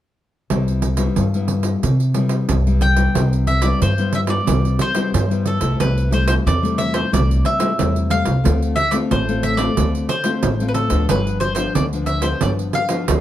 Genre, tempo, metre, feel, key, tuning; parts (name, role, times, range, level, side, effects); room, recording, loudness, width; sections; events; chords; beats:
samba and choro; 91 BPM; 4/4; straight; C major; A4 = 438 Hz
nylon-string guitar; accompaniment; 0.5-13.2 s; G2 to F4; -22 LUFS; left 4 dB
upright bass; bass; 0.5-13.2 s; G1 to C3; -19 LUFS; equal
pandeiro; percussion; 0.5-13.2 s; -23 LUFS; right 5 dB
bowl-back mandolin; melody; 2.8-13.2 s; A4 to G5; -22 LUFS; left 1 dB
light reverb; -16 LUFS; side -12 dB against mid
0.5-3.2 A section; 3.2-13.2 B section
0.5 Cmaj7; 5.8 Am7/C; 8.4 Dm7; 11.1 G7
| 0.51 1.17 1.83 2.49 | 3.15 3.81 4.48 5.14 | 5.80 6.46 7.12 7.78 | 8.45 9.11 9.77 10.43 | 11.09 11.75 12.42 13.08